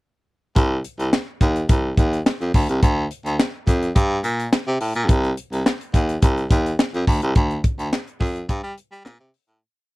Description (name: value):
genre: early-eighties boogie funk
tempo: 106 BPM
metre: 4/4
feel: straight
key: C dorian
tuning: A4 = 443 Hz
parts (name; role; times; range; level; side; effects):
- bright baritone saxophone; bass; 0.6-9.6 s; C2 to G3; -21 LUFS; equal; none
- tight funk drum kit; drums; 0.6-9.6 s; handclaps, hi-hat, kick drum, snare drum; -18 LUFS; equal; none
room: little or no reverb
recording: dry, close 1970s-style studio recording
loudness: -18 LUFS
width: side -21 dB against mid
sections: 0.6-9.6 verse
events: fade-out 7.4-9.6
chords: none